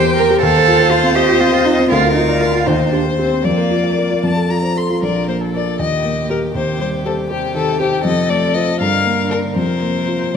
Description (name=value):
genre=quick classical-period movement for piano quartet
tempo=79 BPM (dotted quarters)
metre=6/8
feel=straight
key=Bb major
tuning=A4 = 440 Hz
part: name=warm violin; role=melody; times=0.0-10.4 s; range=G4 to F5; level=-20 LUFS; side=left 7 dB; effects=none
part: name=warm cello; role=second line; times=0.0-10.4 s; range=Bb2 to C5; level=-19 LUFS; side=right 6 dB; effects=none
part: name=warm violin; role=second line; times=0.0-10.4 s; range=G4 to C6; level=-25 LUFS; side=left 4 dB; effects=none
part: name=dark concert grand piano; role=accompaniment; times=0.0-10.4 s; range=Bb1 to D5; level=-16 LUFS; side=equal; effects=none
room=wet scoring stage reverb, RT60 1.8 s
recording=none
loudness=-13 LUFS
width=side -7 dB against mid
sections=0.0-5.0 A section; 5.0-10.4 B section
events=none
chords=0.4 F7/Eb; 1.9 Bb/D; 2.7 Cm/Eb; 3.5 Bb/F; 4.2 F; 5.0 Bb5; 5.8 Eb; 6.6 Cm/Eb; 8.1 F; 8.8 Gm7; 9.6 Fsus4